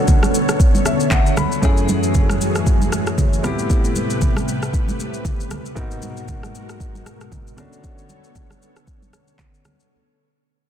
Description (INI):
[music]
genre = amapiano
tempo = 116 BPM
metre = 4/4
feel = swing 58% on 16ths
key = unclear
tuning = A4 = 442 Hz
[part]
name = warm concert grand piano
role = accompaniment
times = 0.0-9.9 s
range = F#2 to B5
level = -24 LUFS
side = left 2 dB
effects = none
[part]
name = string machine, cellos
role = sustained chords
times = 0.0-9.9 s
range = B2 to C#5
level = -23 LUFS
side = equal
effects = ensemble chorus, sidechain pumping
[part]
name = afro-pop drum kit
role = drums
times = 0.1-9.9 s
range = handclaps, kick drum, rim click, shaker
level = -18 LUFS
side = equal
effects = soft clipping on snare
[part]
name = congas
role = percussion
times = 0.1-9.8 s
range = none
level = -26 LUFS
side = right 3 dB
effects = none
[sound]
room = little or no reverb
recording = dense, heavily limited modern master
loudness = -16 LUFS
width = side -9 dB against mid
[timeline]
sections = 0.0-9.9 A section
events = fade-out 0.0-9.9; grand piano fill 0.6-1.6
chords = 0.0 Bm9; 1.6 F#m9; 3.4 Am9; 5.8 G#m9; 7.6 Bm9